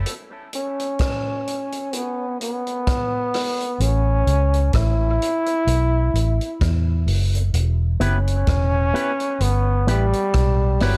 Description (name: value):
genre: dub reggae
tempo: 64 BPM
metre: 4/4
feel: swing 56% on 16ths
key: E dorian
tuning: A4 = 441 Hz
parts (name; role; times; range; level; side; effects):
- vintage muted fingered electric bass; bass; 0.0-11.0 s; E1 to E2; -21 LUFS; equal; none
- vintage drum kit; drums; 0.1-11.0 s; hi-hat, kick drum, rim click; -28 LUFS; equal; none
- warm trombone; melody; 0.5-11.0 s; F#3 to E4; -25 LUFS; equal; dub echo
- electric guitar with an envelope filter; accompaniment; 8.0-11.0 s; B3 to B4; -29 LUFS; equal; harmonic tremolo, dub echo
room: studio ambience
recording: none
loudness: -21 LUFS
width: mono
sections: 0.0-11.0 A section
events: break 0.1-7.5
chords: 0.1 N.C.; 3.8 A; 7.5 Em